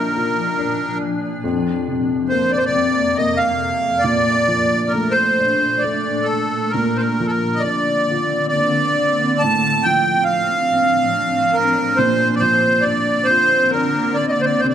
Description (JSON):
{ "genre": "celtic folk, Celtic slow air", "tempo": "68 BPM", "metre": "3/4", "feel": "uneven beats, rubato", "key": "unclear", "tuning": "A4 = 439 Hz", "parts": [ { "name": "accordion", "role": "melody", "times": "0.0-14.7 s", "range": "A4 to A5", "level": "-16 LUFS", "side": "right 1 dB", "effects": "light tremolo tuning" }, { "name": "felt-muted upright piano", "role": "accompaniment", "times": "0.0-14.7 s", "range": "F2 to F4", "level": "-22 LUFS", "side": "equal", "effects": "none" }, { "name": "granular cloud pad", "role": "sustained chords", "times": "0.0-14.7 s", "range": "F2 to Eb4", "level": "-25 LUFS", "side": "left 2 dB", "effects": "built-in reverb" } ], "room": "moderate recital hall reverb, RT60 1.4 s", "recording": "none", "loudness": "-15 LUFS", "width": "side -9 dB against mid", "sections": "0.0-14.7 A section", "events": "none", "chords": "0.0 Bb; 1.4 Fsus4; 4.0 Bbmaj7; 6.7 Bbadd9; 9.4 F6/A; 12.0 Bbadd9", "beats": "0.58 | 1.43 2.30 3.16 | 4.02 4.91 5.83 | 6.73 7.63 8.54 | 9.42 10.29 11.13 | 11.98 12.84 13.71 | 14.61" }